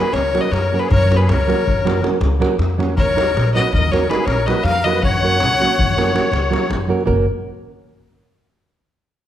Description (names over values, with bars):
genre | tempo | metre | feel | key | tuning
balkan folk, Balkan wedding band | 321 BPM (eighths) | 11/8 | straight | F# major | A4 = 440 Hz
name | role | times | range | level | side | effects
clear violin | melody | 0.0-6.7 s | B4 to F#5 | -20 LUFS | left 2 dB | none
musette accordion | second line | 0.0-6.7 s | G#4 to C#5 | -24 LUFS | left 4 dB | none
nylon-string guitar | accompaniment | 0.0-7.3 s | F#3 to A#4 | -21 LUFS | right 4 dB | none
upright bass | bass | 0.1-7.3 s | F#1 to F#2 | -20 LUFS | equal | none
davul | percussion | 0.1-7.3 s | none | -23 LUFS | left 1 dB | none
room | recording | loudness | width
moderate recital hall reverb, RT60 1.4 s | none | -14 LUFS | side -11 dB against mid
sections
0.0-7.1 A section; 7.1-9.1 B section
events
none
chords
0.0 F#; 3.0 D#m; 5.0 F#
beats
0.15 0.34 0.53 0.72 | 0.91 1.09 1.28 1.47 1.66 1.85 2.03 2.22 2.41 2.60 2.78 | 2.97 3.16 3.35 3.53 3.72 3.91 4.09 4.28 4.47 4.65 4.84 | 5.03 5.21 5.40 5.58 5.77 5.96 6.14 6.33 6.52 6.70 6.89 | 7.07 7.26